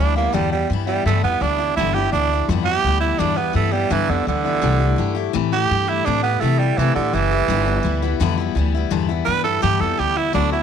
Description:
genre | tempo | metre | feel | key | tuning
rock | 168 BPM | 4/4 | straight | G mixolydian | A4 = 440 Hz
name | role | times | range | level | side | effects
growling tenor saxophone | melody | 0.0-10.6 s | D3 to B4 | -20 LUFS | right 8 dB | none
picked steel-string acoustic guitar | accompaniment | 0.0-10.6 s | G2 to G4 | -23 LUFS | left 13 dB | none
upright bass | bass | 0.0-10.6 s | F#1 to C3 | -21 LUFS | equal | none
room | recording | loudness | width
moderate spring reverb, RT60 1.6 s | 1960s-style stereo with parts hard left and right | -17 LUFS | side -8 dB against mid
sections
0.0-10.6 A section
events
tenor saxophone solo 0.0-10.6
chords
0.0 G6; 4.6 C6; 7.5 G6

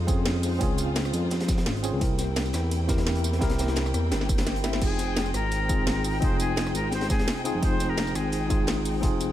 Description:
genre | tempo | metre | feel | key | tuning
liquid drum and bass | 171 BPM | 4/4 | straight | F minor | A4 = 440 Hz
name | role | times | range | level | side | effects
tine electric piano | accompaniment | 0.0-9.3 s | C4 to E5 | -30 LUFS | equal | medium stereo tremolo, digital delay
dark studio string section | sustained chords | 0.0-9.3 s | Ab3 to G5 | -36 LUFS | left 2 dB | sidechain pumping
smooth synth bass | bass | 0.0-9.3 s | F1 to F2 | -28 LUFS | equal | none
crunchy breakbeat drum kit | drums | 0.1-9.3 s | hi-hat, snare drum | -37 LUFS | equal | none
drum and bass drum kit | drums | 0.1-9.3 s | crash cymbal, hi-hat, ride cymbal, rim click, snare drum, tambourine | -32 LUFS | equal | none
electronic kick drum | drums | 0.1-9.1 s | none | -27 LUFS | equal | none
bright reedy silver concert flute | melody | 4.8-8.9 s | Ab4 to C5 | -32 LUFS | equal | digital delay
room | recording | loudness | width
small room ambience | none | -23 LUFS | side -12 dB against mid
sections
0.0-9.3 A section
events
drum fill 4.1-4.8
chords
0.0 Dbmaj7; 2.0 C7; 4.8 Fm7

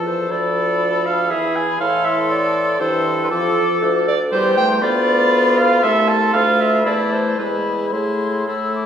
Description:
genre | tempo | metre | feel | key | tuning
quick classical-period movement for wind quintet | 118 BPM | 3/4 | rubato | A minor | A4 = 438 Hz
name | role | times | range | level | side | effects
mellow hollow silver concert flute | melody | 0.0-8.9 s | A5 to E6 | -25 LUFS | left 7 dB | none
clear oboe | second line | 0.0-8.9 s | E4 to A4 | -24 LUFS | left 2 dB | none
mellow French horn | accompaniment | 0.0-8.9 s | E3 to B3 | -24 LUFS | left 1 dB | none
mellow clarinet | accompaniment | 0.0-8.9 s | G#4 to A5 | -19 LUFS | right 2 dB | none
warm bassoon | bass | 0.0-8.9 s | C2 to A2 | -22 LUFS | equal | none
room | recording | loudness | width
wet scoring stage reverb, RT60 1.5 s | recorded in a church or concert hall | -15 LUFS | side -8 dB against mid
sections
0.0-8.9 A section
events
none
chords
0.3 Bm7b5/D; 1.3 E; 1.8 Am; 3.3 Dm/F; 4.3 C/E; 4.8 Bdim/D; 5.8 Am/C; 6.3 Bm7b5/D; 6.9 Am/E; 7.4 E; 7.9 Am

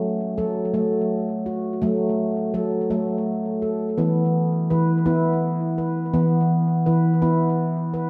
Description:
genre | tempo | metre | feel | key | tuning
world meditative | 56 BPM (dotted quarters) | 6/8 | straight | F# minor pentatonic | A4 = 438 Hz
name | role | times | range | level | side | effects
handpan | solo | 0.0-8.1 s | E3 to B4 | -22 LUFS | equal | tape echo
room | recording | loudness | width
wet echo chamber reverb, RT60 1.6 s, small room reverb | echo-heavy mix | -22 LUFS | mono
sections
0.0-8.1 A section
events
none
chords
0.0 F#m; 4.0 E5

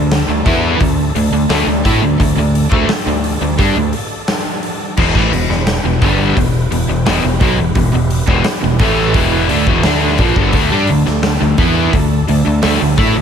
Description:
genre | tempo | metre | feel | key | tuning
classic rock | 86 BPM | 4/4 | straight | unclear | A4 = 439 Hz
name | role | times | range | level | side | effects
tonewheel organ | sustained chords | 0.0-13.2 s | D4 to A5 | -27 LUFS | equal | slow rotary speaker, chorus vibrato
biting overdriven guitar | riff | 0.0-13.2 s | E2 to E4 | -18 LUFS | left 10 dB | none
cranked stack guitar | riff | 0.0-13.2 s | E2 to E4 | -20 LUFS | equal | overdrive
overdriven semi-hollow guitar | riff | 0.0-13.2 s | E2 to E4 | -19 LUFS | right 11 dB | tremolo
growling fingered electric bass | bass | 0.0-13.2 s | E1 to A2 | -18 LUFS | equal | overdrive
big rock drum kit | drums | 0.1-13.1 s | crash cymbal, hi-hat, kick drum, snare drum | -17 LUFS | equal | none
room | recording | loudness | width
light reverb | none | -11 LUFS | side -7 dB against mid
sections
0.0-13.2 A section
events
none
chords
0.0 D5; 5.0 Em; 10.5 D5

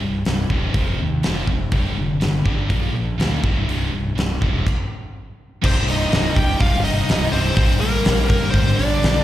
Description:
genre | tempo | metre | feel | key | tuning
hard rock | 123 BPM | 4/4 | straight | C minor | A4 = 440 Hz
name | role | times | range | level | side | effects
distorted electric guitar | riff | 0.0-9.2 s | C2 to Bb3 | -26 LUFS | left 7 dB | overdrive, slapback echo
scooped high-gain guitar | riff | 0.0-9.2 s | C2 to Bb3 | -27 LUFS | right 9 dB | distortion, slapback echo
fuzz fingered electric bass | bass | 0.0-9.2 s | C1 to Eb2 | -22 LUFS | equal | overdrive
huge arena drum kit | drums | 0.3-9.1 s | crash cymbal, hi-hat, kick drum, snare drum | -21 LUFS | equal | none
octave-fuzz lead guitar | second line | 5.6-9.2 s | Bb3 to G4 | -28 LUFS | right 4 dB | distortion, slapback echo
bluesy overdriven lead guitar | melody | 5.7-9.2 s | Bb4 to G5 | -23 LUFS | left 2 dB | distortion, slapback echo, analog delay
room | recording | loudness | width
little or no reverb | live gig heard through the venue's PA, recital hall reverb | -17 LUFS | side -13 dB against mid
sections
0.0-5.6 A section; 5.6-9.2 B section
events
stop 4.6-5.6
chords
0.0 Cm; 0.7 F5; 1.7 G5; 2.7 Bb; 3.4 C5; 4.6 N.C.; 5.6 Cm; 7.6 Gm/Bb

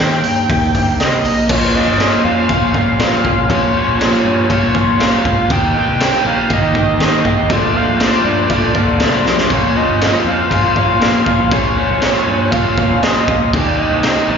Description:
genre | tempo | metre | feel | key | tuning
indie rock | 120 BPM | 4/4 | straight | unclear | A4 = 441 Hz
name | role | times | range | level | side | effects
overdriven synth lead | melody | 0.0-14.4 s | Db5 to G5 | -19 LUFS | right 4 dB | distortion, plate reverb, slapback echo, analog delay
electric guitar through a small old amp | riff | 0.0-14.4 s | Bb2 to G4 | -16 LUFS | left 1 dB | lush chorus, slapback echo
fuzz picked electric bass | bass | 0.0-14.4 s | G1 to Eb3 | -21 LUFS | left 1 dB | overdrive
raw garage drum kit | drums | 0.0-14.2 s | crash cymbal, hi-hat, kick drum, snare drum | -16 LUFS | equal | none
room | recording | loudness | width
light reverb | live gig heard through the venue's PA, recital hall reverb, nothing above 7.5 kHz | -12 LUFS | side -6 dB against mid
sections
0.0-1.5 A section; 1.5-14.4 B section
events
drum fill 9.3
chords
0.0 Eb; 1.5 Bbm; 5.5 Eb; 7.5 Bbmaj7; 9.5 Bbm; 13.5 Eb

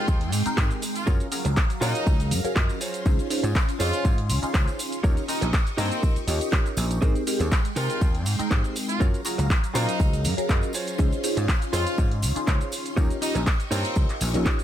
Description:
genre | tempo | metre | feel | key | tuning
filtered disco house | 121 BPM | 4/4 | swing 54% on 16ths | Ab major | A4 = 440 Hz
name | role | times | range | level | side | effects
brilliant horn section | melody | 0.0-14.1 s | C4 to F4 | -33 LUFS | right 1 dB | vintage 12-bit sampler grit, sidechain pumping
funky polysynth comp | accompaniment | 0.0-14.6 s | Gb3 to C6 | -30 LUFS | equal | chorus, phaser, sidechain pumping
phased string machine | sustained chords | 0.0-14.6 s | Gb3 to Db6 | -34 LUFS | equal | ensemble chorus, phaser, sidechain pumping
direct-recorded clean electric guitar | riff | 0.0-14.6 s | Eb4 to Eb5 | -33 LUFS | right 3 dB | vintage 12-bit sampler grit, sidechain pumping
vintage slap bass | bass | 0.1-14.4 s | Bb1 to C3 | -26 LUFS | equal | sidechain pumping
electronic kick drum | drums | 0.1-14.6 s | none | -22 LUFS | equal | none
punchy analog drum machine | drums | 0.1-14.6 s | handclaps, hi-hat, shaker | -31 LUFS | right 1 dB | sidechain pumping on hats, sidechain pumping on perc, sidechain pumping on cymbals
tambourine | percussion | 0.1-14.6 s | none | -42 LUFS | equal | none
room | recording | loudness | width
little or no reverb | none | -22 LUFS | side -11 dB against mid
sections
0.0-14.6 A section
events
none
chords
0.0 Abmaj7; 1.1 Gbmaj7; 2.8 Dbmaj7; 5.0 Eb7; 7.0 Abmaj7; 9.0 Gbmaj7; 10.7 Dbmaj7; 13.0 Eb7

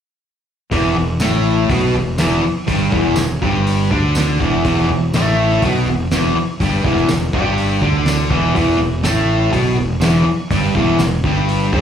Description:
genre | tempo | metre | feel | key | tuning
garage rock duo or trio | 123 BPM | 4/4 | straight | unclear | A4 = 441 Hz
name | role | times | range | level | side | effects
fuzz guitar | riff | 0.7-11.8 s | E2 to D4 | -16 LUFS | equal | distortion, slapback echo
fuzz fingered electric bass | bass | 0.7-11.8 s | E1 to D2 | -19 LUFS | equal | overdrive
cloth-damped thuddy drum kit | drums | 0.7-11.8 s | hi-hat, kick drum, snare drum | -22 LUFS | equal | none
tambourine | percussion | 1.2-11.1 s | none | -30 LUFS | right 2 dB | none
room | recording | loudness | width
moderate club ambience, RT60 0.5 s | live gig heard through the venue's PA, club reverb | -14 LUFS | side -8 dB against mid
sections
0.7-11.8 A section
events
none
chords
0.7 E5

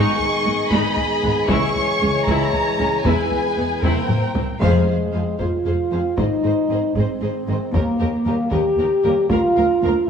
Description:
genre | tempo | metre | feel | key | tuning
cinematic, epic orchestral film score | 77 BPM (dotted quarters) | 6/8 | straight | G# minor, F dorian from 4.6 s | A4 = 440 Hz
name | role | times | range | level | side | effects
warm symphonic violin section | melody | 0.0-9.9 s | Eb5 to C#6 | -26 LUFS | right 1 dB | none
rich chamber violin section | second line | 0.0-9.9 s | G#4 to D#5 | -27 LUFS | left 2 dB | none
warm symphonic viola section | accompaniment | 0.0-9.9 s | G#3 to Bb4 | -28 LUFS | equal | none
mellow French horn section | sustained chords | 0.0-10.1 s | Ab3 to C5 | -21 LUFS | left 1 dB | none
warm trombone section | sustained chords | 0.0-9.9 s | D#3 to C4 | -29 LUFS | right 2 dB | none
rich symphonic cello section | bass | 0.0-9.9 s | C2 to G#2 | -25 LUFS | right 1 dB | none
warm studio double bass section | bass | 0.0-9.9 s | E1 to Eb2 | -26 LUFS | right 1 dB | none
solo taiko drums | drums | 0.2-9.8 s | none | -26 LUFS | left 1 dB | none
timpani | percussion | 4.6-5.4 s | F2 | -28 LUFS | left 2 dB | none
room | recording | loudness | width
wet scoring stage reverb, RT60 1.5 s | none | -17 LUFS | side -7 dB against mid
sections
0.0-4.6 A section; 4.6-10.1 B section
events
drum fill 3.8-4.6; band accent 4.6-5.1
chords
0.0 G#m; 1.5 C#m; 3.1 E; 3.8 C7; 4.6 Fm; 6.2 Ab; 7.7 Eb; 9.3 Bb/D

